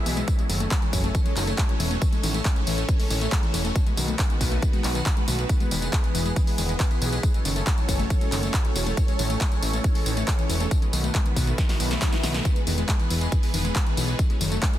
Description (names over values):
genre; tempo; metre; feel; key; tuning
uplifting trance; 138 BPM; 4/4; straight; E major; A4 = 440 Hz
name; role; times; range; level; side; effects
wide unison pluck; arpeggios; 0.0-14.8 s; D#3 to B3; -31 LUFS; left 4 dB; sidechain pumping, ping-pong delay
downlifter and swell; sound effects; 0.0-2.0, 11.7-12.5 s; none; -40 LUFS; left 1 dB; none
fat analog bass; bass; 0.1-14.6 s; E1 to B1; -26 LUFS; equal; sidechain pumping
punchy analog drum machine; drums; 0.1-14.8 s; handclaps, hi-hat, snare drum, tambourine; -30 LUFS; equal; none
electronic kick drum; drums; 0.3-14.7 s; none; -23 LUFS; equal; none
room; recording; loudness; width
light reverb, digital ambience; dense, heavily limited modern master; -21 LUFS; side -13 dB against mid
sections
0.0-14.8 A section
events
drum fill 11.6-12.5; swell 11.7-12.5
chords
0.3 F#m; 2.0 A; 3.8 B; 5.5 E; 7.2 F#m; 9.0 A; 10.7 B; 12.5 E; 14.2 F#m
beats
| 0.28 0.71 1.15 1.58 | 2.02 2.45 2.89 3.32 | 3.76 4.19 4.62 5.06 | 5.50 5.93 6.36 6.80 | 7.23 7.67 8.10 8.54 | 8.97 9.41 9.84 10.28 | 10.71 11.15 11.58 12.02 | 12.45 12.89 13.32 13.76 | 14.19 14.62